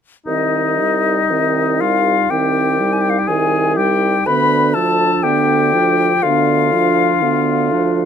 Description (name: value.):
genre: classical, slow romantic movement for wind quintet.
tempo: 61 BPM.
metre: 4/4.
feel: rubato.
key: C minor.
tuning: A4 = 442 Hz.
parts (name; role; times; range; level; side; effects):
silver concert flute; melody; 0.3-8.1 s; Eb5 to B5; -18 LUFS; left 7 dB; none.
warm oboe; second line; 0.3-8.1 s; Eb4 to B4; -20 LUFS; left 4 dB; none.
clear clarinet; accompaniment; 0.3-8.1 s; B3 to Eb4; -23 LUFS; right 10 dB; none.
warm French horn; accompaniment; 0.3-8.1 s; D3 to G3; -21 LUFS; right 2 dB; none.
dark bassoon; bass; 0.3-8.1 s; C2 to D2; -20 LUFS; right 2 dB; none.
room: light reverb.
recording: close, detailed microphones.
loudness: -13 LUFS.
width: side -8 dB against mid.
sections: 0.3-8.1 A section.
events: none.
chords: 0.3 Cm; 4.3 Bdim/D.